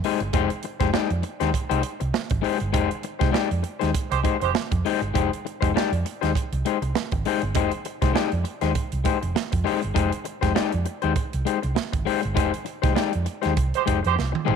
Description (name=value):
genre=funk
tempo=100 BPM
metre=4/4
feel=swing 56% on 16ths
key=F dorian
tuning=A4 = 440 Hz
part: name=electric guitar at the edge of break-up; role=accompaniment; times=0.0-14.6 s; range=Ab3 to D5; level=-25 LUFS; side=left 10 dB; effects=none
part: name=crisp fusion drum kit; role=drums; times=0.0-14.6 s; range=hi-hat, kick drum, snare drum, toms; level=-26 LUFS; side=right 5 dB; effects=none
part: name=hollow-body short-scale fingered electric bass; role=bass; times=0.2-14.6 s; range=F1 to F2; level=-26 LUFS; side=right 1 dB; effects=none
part: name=warm horn section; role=second line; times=4.1-4.5, 13.7-14.1 s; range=Ab3 to C5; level=-26 LUFS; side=right 14 dB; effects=none
room=light reverb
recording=1960s-style stereo with parts hard left and right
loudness=-22 LUFS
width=side -6 dB against mid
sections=0.0-14.6 A section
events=band accent 2.7-5.2, 12.4-14.6; drum fill 14.2-14.6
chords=0.0 Fm9